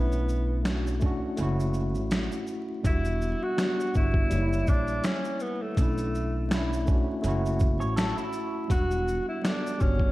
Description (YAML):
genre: lo-fi hip hop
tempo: 82 BPM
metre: 4/4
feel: swing 56% on 16ths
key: E dorian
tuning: A4 = 439 Hz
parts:
  - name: breathy tenor saxophone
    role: melody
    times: 0.0-10.1 s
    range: A3 to F#4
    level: -31 LUFS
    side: equal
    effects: low-pass filter
  - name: tine electric piano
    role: accompaniment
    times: 0.0-10.1 s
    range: D3 to C#5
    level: -31 LUFS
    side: equal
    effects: overdrive, fast stereo tremolo, cassette tape, low-pass filter
  - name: upright bass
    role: bass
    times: 0.0-10.1 s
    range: E1 to B1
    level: -29 LUFS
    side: equal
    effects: none
  - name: boom bap sampler-style drum kit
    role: drums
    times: 0.1-10.1 s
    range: finger snaps, hi-hat, kick drum, shaker, snare drum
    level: -27 LUFS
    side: equal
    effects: none
  - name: electric guitar through a small old amp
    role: second line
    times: 7.8-8.7 s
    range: E4 to C#5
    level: -35 LUFS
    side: right 1 dB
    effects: low-pass filter, analog delay
room: light reverb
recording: vinyl crackle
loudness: -25 LUFS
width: side -18 dB against mid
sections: 0.0-10.1 A section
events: none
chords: 0.0 Bm11; 1.4 F#m7; 2.8 Em9; 4.3 F#7b9; 5.8 Bm11; 7.2 F#m7; 8.7 Em9